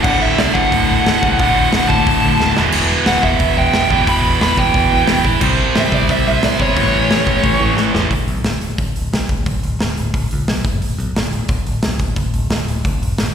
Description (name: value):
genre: punk rock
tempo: 178 BPM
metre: 4/4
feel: straight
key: D mixolydian, D major from 8.1 s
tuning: A4 = 439 Hz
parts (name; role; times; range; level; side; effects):
- dark smooth lead guitar; melody; 0.0-7.7 s; C#5 to B5; -17 LUFS; right 1 dB; overdrive, slapback echo
- overdriven electric guitar; riff; 0.0-8.1 s; D2 to C4; -21 LUFS; left 11 dB; slapback echo
- tight distorted guitar; riff; 0.0-8.1 s; D2 to C4; -18 LUFS; right 10 dB; distortion, slapback echo
- modern bright picked electric bass; bass; 0.0-13.3 s; D1 to A2; -21 LUFS; equal; none
- big rock drum kit; drums; 0.0-13.3 s; crash cymbal, hi-hat, kick drum, snare drum, splash cymbal; -18 LUFS; equal; none
room: small room ambience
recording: live gig heard through the venue's PA, recital hall reverb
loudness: -13 LUFS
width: side -8 dB against mid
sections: 0.0-8.1 A section; 8.1-13.3 B section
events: drum fill 2.4-2.7, 7.8-8.1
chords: 0.0 D; 2.6 Em; 5.4 C5; 6.8 A; 8.1 N.C.